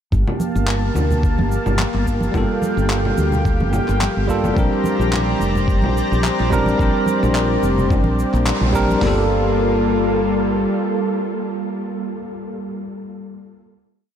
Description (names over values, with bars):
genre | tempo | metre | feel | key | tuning
sunset chillout | 108 BPM | 4/4 | swing 55% on 16ths | G minor | A4 = 441 Hz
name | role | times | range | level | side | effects
lush unison pad | sustained chords | 0.1-12.0 s | G3 to Bb5 | -23 LUFS | equal | chorus
woody fretless electric bass | bass | 0.1-10.6 s | F1 to D2 | -20 LUFS | equal | analog chorus
dusty soul sampler-style drum kit | drums | 0.1-9.2 s | hi-hat, kick drum, snare drum, toms | -21 LUFS | equal | none
electronic cabasa, congas and handclaps | drums | 0.1-9.0 s | none | -27 LUFS | left 1 dB | none
congas | percussion | 0.4-9.0 s | none | -28 LUFS | right 2 dB | none
bell-like tine electric piano | accompaniment | 2.3-13.8 s | G3 to Bb4 | -21 LUFS | equal | auto-pan, ping-pong delay
room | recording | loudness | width
moderate huge ambient reverb, RT60 7.3 s | dreamy mix soaked in reverb | -16 LUFS | side -9 dB against mid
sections
0.1-9.0 groove; 9.0-11.2 final chord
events
band accent 8.5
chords
0.1 Gm9; 4.6 Bb69; 9.0 Gm9